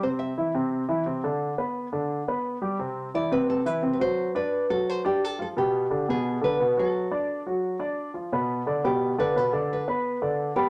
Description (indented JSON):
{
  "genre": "jazz",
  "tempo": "174 BPM",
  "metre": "4/4",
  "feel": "straight",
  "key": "G major",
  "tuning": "A4 = 438 Hz",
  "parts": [
    { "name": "nylon-string guitar", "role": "melody", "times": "0.0-10.7 s", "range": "G4 to E5", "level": "-29 LUFS", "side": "equal", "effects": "none" },
    { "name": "warm grand piano", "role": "accompaniment", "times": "0.0-10.7 s", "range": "B2 to B5", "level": "-28 LUFS", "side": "equal", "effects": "none" }
  ],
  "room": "moderate studio reverb, RT60 0.9 s",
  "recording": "none",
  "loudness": "-27 LUFS",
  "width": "mono",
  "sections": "0.0-8.3 A section; 8.3-10.7 B section",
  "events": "nylon-string guitar solo 8.3-10.7",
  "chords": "0.0 Cadd9; 1.4 G; 2.8 Cmaj7#11; 4.2 D; 5.6 G; 6.2 Bm7; 6.9 D; 8.3 G (rootless)"
}